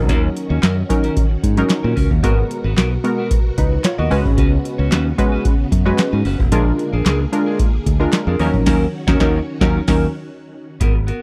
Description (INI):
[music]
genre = early-eighties boogie funk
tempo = 112 BPM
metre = 4/4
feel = straight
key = unclear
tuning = A4 = 440 Hz
[part]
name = funky polysynth comp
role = accompaniment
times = 0.0-10.1 s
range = E#3 to D#5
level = -22 LUFS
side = equal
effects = chorus
[part]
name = string machine, full ensemble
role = sustained chords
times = 0.0-10.8 s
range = B2 to A#4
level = -31 LUFS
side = equal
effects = ensemble chorus
[part]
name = modern bright fingered electric bass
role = bass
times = 0.0-11.1 s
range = E#1 to A#2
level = -21 LUFS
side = equal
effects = none
[part]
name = clean electric guitar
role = riff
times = 0.1-11.2 s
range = B3 to C#5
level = -28 LUFS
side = equal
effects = subtle chorus
[part]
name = booming analog drum machine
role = drums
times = 0.1-11.2 s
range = crash cymbal, handclaps, hi-hat, kick drum, snare drum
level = -19 LUFS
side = equal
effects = none
[sound]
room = little or no reverb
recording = dry, close 1970s-style studio recording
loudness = -17 LUFS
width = mono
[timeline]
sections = 0.0-10.8 A section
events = band accent 8.7-10.8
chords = 0.0 D#m7; 2.2 G#m9; 4.1 C#7sus4; 6.5 A#7; 8.4 D#m7